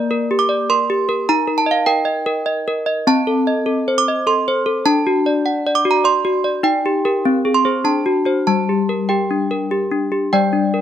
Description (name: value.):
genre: classical, lullaby for handbells.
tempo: 100 BPM.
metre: 3/4.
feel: straight.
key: G minor.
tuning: A4 = 442 Hz.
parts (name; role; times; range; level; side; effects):
desk bells; solo; 0.0-10.8 s; G3 to D6; -15 LUFS; equal; none.
room: studio ambience.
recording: dry, close 1970s-style studio recording.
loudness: -15 LUFS.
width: side -10 dB against mid.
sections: 0.0-10.3 A section.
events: none.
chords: 0.0 Gm/Bb; 1.3 Eb; 3.1 Adim/C; 4.8 D; 6.6 Eb; 7.2 Ab/C; 7.8 D7; 8.5 Gm.